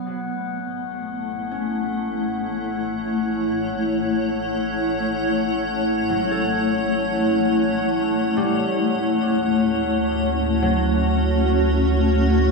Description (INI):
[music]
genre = ambient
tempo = free time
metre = none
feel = none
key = unclear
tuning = A4 = 440 Hz
[part]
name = granular cloud pad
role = sustained chords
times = 0.0-12.5 s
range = A3 to F#5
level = -20 LUFS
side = left 1 dB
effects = built-in reverb
[part]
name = warm sub bass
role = bass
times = 0.0-12.5 s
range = A1 to D2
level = -26 LUFS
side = right 2 dB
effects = tube saturation
[part]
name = glass harmonica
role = texture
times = 0.0-12.5 s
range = F#5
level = -30 LUFS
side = left 7 dB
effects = none
[part]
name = concert harp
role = arpeggios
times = 1.5-12.5 s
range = F#3 to A4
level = -33 LUFS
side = right 1 dB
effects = diffuse ambient delay
[sound]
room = wet lush hall reverb, RT60 2.6 s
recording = small room ambience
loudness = -19 LUFS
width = side -2 dB against mid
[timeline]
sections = 0.0-12.5 A section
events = fade-in on harp 0.0-12.5; fade-in on sub bass 0.0-12.5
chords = 0.0 A; 8.9 Dmaj7